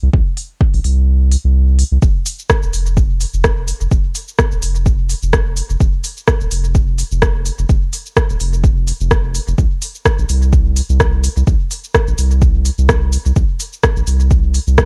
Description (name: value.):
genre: dub techno.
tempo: 127 BPM.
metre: 4/4.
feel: swing 55% on 16ths.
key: unclear.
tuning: A4 = 440 Hz.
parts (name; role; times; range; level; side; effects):
soft dub sub bass; bass; 0.0-14.9 s; Eb1 to C2; -17 LUFS; equal; sidechain pumping.
electronic kick drum; drums; 0.1-14.9 s; none; -17 LUFS; equal; small room ambience.
deep house drum kit; drums; 0.4-14.9 s; cabasa, hi-hat, rim click; -21 LUFS; equal; small room ambience.
room: little or no reverb.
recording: dry, gritty hardware recording, cassette tape.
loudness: -15 LUFS.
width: mono.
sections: 0.0-2.0 A section; 2.0-14.9 A section.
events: kick drops out 1.1-2.0.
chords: none.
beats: | 0.14 0.61 1.08 1.55 | 2.02 2.50 2.97 3.44 | 3.91 4.39 4.86 5.33 | 5.80 6.28 6.75 7.22 | 7.69 8.17 8.64 9.11 | 9.58 10.06 10.53 11.00 | 11.47 11.95 12.42 12.89 | 13.36 13.84 14.31 14.78.